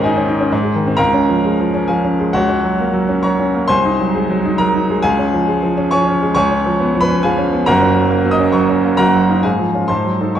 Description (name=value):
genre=classical, virtuoso piano study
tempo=134 BPM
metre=3/4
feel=rubato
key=Db major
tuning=A4 = 443 Hz
part: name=clear baby grand piano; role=solo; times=0.0-10.4 s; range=Gb1 to Eb6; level=-13 LUFS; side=equal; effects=none
room=moderate concert hall reverb, RT60 1.9 s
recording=dark, warm production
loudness=-13 LUFS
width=side -10 dB against mid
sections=1.0-10.4 A section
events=none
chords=0.0 Absus4; 0.5 Ab; 1.0 Db; 2.3 Gb/Db; 3.7 Ab7/C; 5.0 Db; 6.4 Db7; 7.7 Gb; 9.0 Ebm/Gb; 9.4 Db/Ab; 9.9 Ab7b9